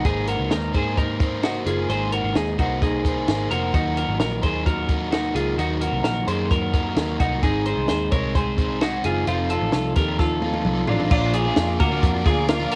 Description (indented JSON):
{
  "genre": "jangly indie pop",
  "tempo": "130 BPM",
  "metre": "4/4",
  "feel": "straight",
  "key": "unclear",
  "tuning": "A4 = 439 Hz",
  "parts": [
    { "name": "overdriven semi-hollow guitar", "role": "accompaniment", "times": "0.0-12.8 s", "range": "Bb2 to C5", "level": "-29 LUFS", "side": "equal", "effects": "cassette tape" },
    { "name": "twelve-string electric guitar", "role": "arpeggios", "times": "0.0-12.8 s", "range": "C4 to Db5", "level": "-27 LUFS", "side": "equal", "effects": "cassette tape" },
    { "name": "compact cocktail drum kit", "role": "drums", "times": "0.0-12.8 s", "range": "crash cymbal, hi-hat, kick drum, snare drum, toms", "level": "-25 LUFS", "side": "equal", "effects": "cassette tape" },
    { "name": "vintage muted picked electric bass", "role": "bass", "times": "0.1-12.6 s", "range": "F1 to Ab2", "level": "-29 LUFS", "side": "equal", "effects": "none" },
    { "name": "bright studio string section", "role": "sustained chords", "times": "11.1-12.8 s", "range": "Bb4 to D6", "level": "-36 LUFS", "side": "equal", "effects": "cassette tape" }
  ],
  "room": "light reverb",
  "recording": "home recording on cassette",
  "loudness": "-22 LUFS",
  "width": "mono",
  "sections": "0.0-11.1 A section; 11.1-12.8 B section",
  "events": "drum fill 10.2-11.1",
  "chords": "0.0 Abadd9; 3.7 Ebm; 7.4 Ab; 9.3 F7; 11.1 Bb"
}